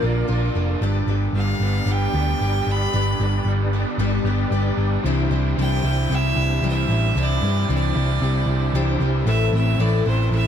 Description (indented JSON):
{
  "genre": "rock",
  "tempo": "114 BPM",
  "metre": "4/4",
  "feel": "straight",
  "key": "C major",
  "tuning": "A4 = 443 Hz",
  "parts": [
    { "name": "bright fiddle", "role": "melody", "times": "0.0-10.5 s", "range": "C5 to B5", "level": "-27 LUFS", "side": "right 3 dB", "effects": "analog delay" },
    { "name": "clean lap steel guitar", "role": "second line", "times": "0.0-0.8 s", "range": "Bb4", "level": "-37 LUFS", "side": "right 6 dB", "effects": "none" },
    { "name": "picked twelve-string acoustic guitar", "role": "accompaniment", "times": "0.0-10.5 s", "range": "A2 to C5", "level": "-28 LUFS", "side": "left 8 dB", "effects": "analog delay" },
    { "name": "bright tonewheel organ", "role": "sustained chords", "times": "0.0-10.5 s", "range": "C4 to D5", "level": "-32 LUFS", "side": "right 2 dB", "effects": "slow rotary speaker, chorus vibrato" },
    { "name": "crunchy overdriven guitar", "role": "riff", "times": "0.0-10.5 s", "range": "G2 to G4", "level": "-26 LUFS", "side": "right 1 dB", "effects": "analog delay" },
    { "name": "hollow-body short-scale picked electric bass", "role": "bass", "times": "0.0-10.5 s", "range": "F1 to G2", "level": "-20 LUFS", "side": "equal", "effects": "none" }
  ],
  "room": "little or no reverb",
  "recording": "echo-heavy mix",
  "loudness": "-18 LUFS",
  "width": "side -8 dB against mid",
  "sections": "0.0-5.0 A section; 5.0-10.5 B section",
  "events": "none",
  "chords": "0.0 Bb; 0.8 G; 5.0 Cadd9; 9.3 Amadd9",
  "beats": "0.29 | 0.82 1.35 1.88 2.40 | 2.93 3.46 3.99 4.52 | 5.04 5.57 6.10 6.63 | 7.16 7.68 8.21 8.74 | 9.27 9.79 10.32"
}